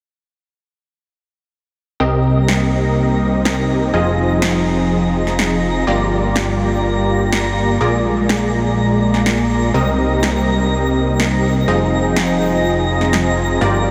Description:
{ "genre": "progressive house", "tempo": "124 BPM", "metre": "4/4", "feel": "straight", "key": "C minor", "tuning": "A4 = 441 Hz", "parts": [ { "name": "lush unison pad", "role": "sustained chords", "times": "2.0-13.9 s", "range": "C3 to G5", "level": "-21 LUFS", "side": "equal", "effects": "chorus" }, { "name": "supersaw stab", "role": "stabs", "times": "2.0-13.9 s", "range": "G2 to Eb5", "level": "-21 LUFS", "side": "equal", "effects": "low-pass filter, analog delay" }, { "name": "fat analog bass", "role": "bass", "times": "2.0-13.9 s", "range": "F1 to C2", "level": "-23 LUFS", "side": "equal", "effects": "tube saturation" }, { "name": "twinkling granular texture", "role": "texture", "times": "2.2-13.9 s", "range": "Bb5 to Bb6", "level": "-28 LUFS", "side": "equal", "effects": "built-in reverb" }, { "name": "electronic snare drum", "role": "drums", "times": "2.5-13.2 s", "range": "none", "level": "-26 LUFS", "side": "equal", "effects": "none" } ], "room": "wet huge ambient reverb, RT60 6.9 s", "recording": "dreamy mix soaked in reverb", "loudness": "-16 LUFS", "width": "mono", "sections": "2.0-13.9 A section", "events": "filter sweep on analog synth pad 2.0-13.9", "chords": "2.0 Cm7; 3.9 Fm7; 5.9 Gm7; 7.8 Bb7; 9.7 Cm7; 11.7 Fm7", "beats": "| 2.00 2.48 2.97 3.45 | 3.94 4.42 4.90 5.39 | 5.87 6.36 6.84 7.32 | 7.81 8.29 8.78 9.26 | 9.74 10.23 10.71 11.20 | 11.68 12.16 12.65 13.13 | 13.61" }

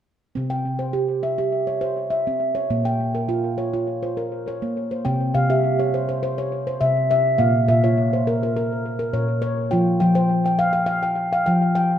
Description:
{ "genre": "world meditative, meditative tuned percussion", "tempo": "103 BPM", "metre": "4/4", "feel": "straight", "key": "unclear", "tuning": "A4 = 440 Hz", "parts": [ { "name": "handpan", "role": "solo", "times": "0.4-12.0 s", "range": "Bb2 to G5", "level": "-19 LUFS", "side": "equal", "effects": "analog delay" } ], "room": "wet spring reverb, RT60 1.9 s, small room ambience", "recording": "echo-heavy mix", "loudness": "-19 LUFS", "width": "side -10 dB against mid", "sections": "0.4-5.1 A section; 5.1-12.0 B section", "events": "none", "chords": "0.4 C; 2.7 Bbm; 5.1 C; 7.4 Bbm; 9.7 F5", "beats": "| 0.37 0.95 1.54 2.13 | 2.71 3.30 3.88 4.47 | 5.05 5.64 6.22 6.80 | 7.39 7.97 8.55 9.13 | 9.72 10.30 10.88 11.46" }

